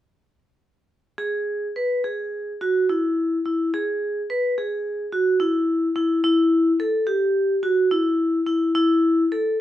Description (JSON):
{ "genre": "contemporary instrumental, contemporary", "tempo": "214 BPM (eighths)", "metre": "9/8", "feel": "straight", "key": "E major", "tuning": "A4 = 440 Hz", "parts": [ { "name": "vibraphone with hard mallets", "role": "arpeggios", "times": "1.2-9.6 s", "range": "E4 to B4", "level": "-19 LUFS", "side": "equal", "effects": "none" } ], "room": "moderate studio reverb, RT60 0.9 s", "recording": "none", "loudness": "-19 LUFS", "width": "side -12 dB against mid", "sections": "1.2-9.6 A section", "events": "none", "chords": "none" }